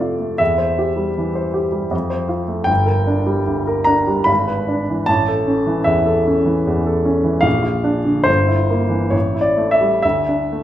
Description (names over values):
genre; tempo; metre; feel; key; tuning
classical, romantic character piece for solo piano; 62-80 BPM; 3/4; rubato; unclear; A4 = 440 Hz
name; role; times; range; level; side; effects
clear baby grand piano; solo; 0.0-10.6 s; G1 to B5; -15 LUFS; equal; none
room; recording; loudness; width
wet recital hall reverb, RT60 1.6 s; minimal, uncompressed stereo recording; -15 LUFS; side -12 dB against mid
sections
0.0-10.6 A section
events
none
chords
0.4 C/E; 1.9 F; 2.7 Gm; 4.3 E7/G#; 5.1 A; 7.5 Bb; 8.3 Edim/G; 9.1 A5; 10.0 D5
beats
| 0.40 1.17 1.93 | 2.69 3.50 4.29 | 5.08 5.87 6.66 | 7.45 8.28 9.14 | 10.03